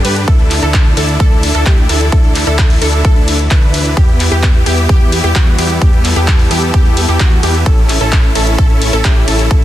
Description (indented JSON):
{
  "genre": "EDM, festival progressive house",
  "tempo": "130 BPM",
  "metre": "4/4",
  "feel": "straight",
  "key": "unclear",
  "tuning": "A4 = 440 Hz",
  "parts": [
    { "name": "clear symphonic string section", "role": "sustained chords", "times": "0.0-9.6 s", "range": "C#3 to A4", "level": "-24 LUFS", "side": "left 3 dB", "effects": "sidechain pumping" },
    { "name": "wide unison pluck", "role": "arpeggios", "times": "0.0-9.6 s", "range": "F#4 to B4", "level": "-20 LUFS", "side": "equal", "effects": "sidechain pumping, ping-pong delay" },
    { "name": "supersaw chords", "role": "riff", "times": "0.0-9.6 s", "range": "B3 to B4", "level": "-18 LUFS", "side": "equal", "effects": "sidechain pumping, ping-pong delay" },
    { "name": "fat analog bass", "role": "bass", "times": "0.0-9.6 s", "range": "A1 to G2", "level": "-16 LUFS", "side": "equal", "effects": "sidechain pumping" },
    { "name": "big-room dance drum kit", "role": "drums", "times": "0.0-9.6 s", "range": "handclaps, hi-hat, ride cymbal", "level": "-19 LUFS", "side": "left 1 dB", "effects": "none" },
    { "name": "electronic kick drum", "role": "drums", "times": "0.3-9.6 s", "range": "none", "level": "-10 LUFS", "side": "equal", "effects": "none" }
  ],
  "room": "digital ambience",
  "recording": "dense, heavily limited modern master",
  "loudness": "-8 LUFS",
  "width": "side -13 dB against mid",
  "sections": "0.0-9.6 A section",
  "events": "none",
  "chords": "0.3 Dsus2; 4.0 Em; 7.7 A",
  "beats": "| 0.28 0.74 1.20 1.66 | 2.12 2.58 3.05 3.51 | 3.97 4.43 4.89 5.35 | 5.82 6.28 6.74 7.20 | 7.66 8.12 8.59 9.05 | 9.51"
}